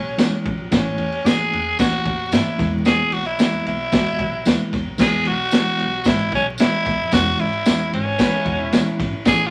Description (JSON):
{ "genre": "uptempo 1960s-style soul", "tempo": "112 BPM", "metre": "4/4", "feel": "straight", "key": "E major", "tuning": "A4 = 441 Hz", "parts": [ { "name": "raspy tenor saxophone", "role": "melody", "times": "0.0-9.5 s", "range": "C#4 to G#4", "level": "-24 LUFS", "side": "equal", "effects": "none" }, { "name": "reed electric piano", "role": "accompaniment", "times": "0.0-9.5 s", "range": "E3 to F#4", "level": "-27 LUFS", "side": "equal", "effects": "fast tremolo" }, { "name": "upright bass", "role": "bass", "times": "0.0-9.5 s", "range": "E1 to E3", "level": "-34 LUFS", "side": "equal", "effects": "none" }, { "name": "crunchy breakbeat drum kit", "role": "drums", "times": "0.2-9.4 s", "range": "crash cymbal, kick drum, ride cymbal, snare drum", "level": "-23 LUFS", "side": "equal", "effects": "none" }, { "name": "congas", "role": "percussion", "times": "0.2-4.9 s", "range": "none", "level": "-37 LUFS", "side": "equal", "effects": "none" }, { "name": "tambourine", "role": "percussion", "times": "0.2-9.4 s", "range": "none", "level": "-34 LUFS", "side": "equal", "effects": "none" }, { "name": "electric guitar through a small old amp", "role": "riff", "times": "8.1-9.2 s", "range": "C#4 to C#5", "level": "-32 LUFS", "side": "equal", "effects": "warbly pitch drift" } ], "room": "moderate studio reverb, RT60 0.6 s", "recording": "vinyl crackle", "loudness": "-19 LUFS", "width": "mono", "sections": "0.0-5.0 A section; 5.0-9.5 A section", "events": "none", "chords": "0.0 C#m; 0.7 A; 2.6 E; 7.1 C#m/E" }